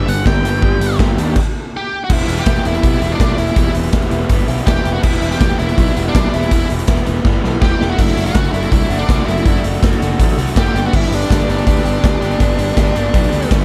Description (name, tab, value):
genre	indie rock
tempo	163 BPM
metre	4/4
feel	straight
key	unclear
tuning	A4 = 441 Hz
part	octave-fuzz lead guitar	melody	0.0-13.5 s	D4 to G5	-24 LUFS	equal	distortion
part	raw garage guitar	riff	0.0-13.6 s	E2 to G4	-23 LUFS	equal	overdrive
part	fuzz picked electric bass	bass	0.0-13.6 s	E1 to Eb2	-21 LUFS	equal	overdrive
part	big rock drum kit	drums	0.1-13.6 s	crash cymbal, hi-hat, kick drum, snare drum	-18 LUFS	equal	none
room	little or no reverb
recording	dark, warm production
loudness	-15 LUFS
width	mono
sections	0.0-2.1 A section; 2.1-13.6 B section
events	lead electric guitar solo 0.0-2.1; stop 1.4-2.1; drum fill 7.3-8.0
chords	0.0 G; 2.1 Em; 8.0 D/F#; 10.8 G